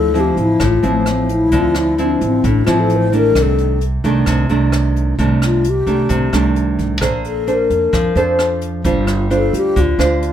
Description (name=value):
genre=bossa nova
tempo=131 BPM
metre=4/4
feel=straight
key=D minor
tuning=A4 = 435 Hz
part: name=mellow hollow wooden-headed alto flute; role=melody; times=0.0-10.0 s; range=A3 to C5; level=-17 LUFS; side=left 5 dB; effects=none
part: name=nylon-string guitar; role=accompaniment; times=0.0-10.3 s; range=A2 to C5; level=-17 LUFS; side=right 1 dB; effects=none
part: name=upright bass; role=bass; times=0.0-10.3 s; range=G1 to F2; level=-18 LUFS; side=right 1 dB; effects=none
part: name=jazz brush drum kit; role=drums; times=0.1-10.3 s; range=hi-hat, kick drum, rim click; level=-24 LUFS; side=right 1 dB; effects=none
room=light reverb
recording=none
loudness=-13 LUFS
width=side -10 dB against mid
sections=0.0-10.3 A section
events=alto flute solo 0.0-10.3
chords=0.0 Dm9; 3.4 Cm69; 7.0 Bbmaj9; 8.8 G7sus4